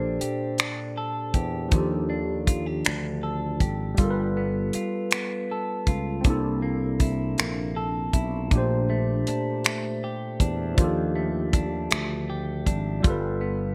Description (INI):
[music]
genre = slow six-eight R&B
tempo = 53 BPM (dotted quarters)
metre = 6/8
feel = straight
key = Bb major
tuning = A4 = 439 Hz
[part]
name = semi-hollow electric guitar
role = second line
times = 0.0-13.7 s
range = Bb2 to A4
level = -35 LUFS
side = equal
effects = none
[part]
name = barky tine electric piano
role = accompaniment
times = 0.0-13.7 s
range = Bb2 to C5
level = -31 LUFS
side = equal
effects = lush chorus
[part]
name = sustaining fretless electric bass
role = bass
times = 0.0-13.7 s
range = G1 to E2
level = -32 LUFS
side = equal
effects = none
[part]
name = damped 70s drum kit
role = drums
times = 0.2-13.2 s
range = finger snaps, hi-hat, kick drum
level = -25 LUFS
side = equal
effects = gated reverb
[sound]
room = light reverb, small room ambience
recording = bright 1980s-style digital production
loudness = -26 LUFS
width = mono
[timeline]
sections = 0.0-13.7 A section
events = none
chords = 0.0 Bbmaj13; 1.7 Ebmaj9#11; 4.0 G9; 6.2 C13; 8.5 Bbmaj13; 10.8 Ebmaj9#11; 13.0 G9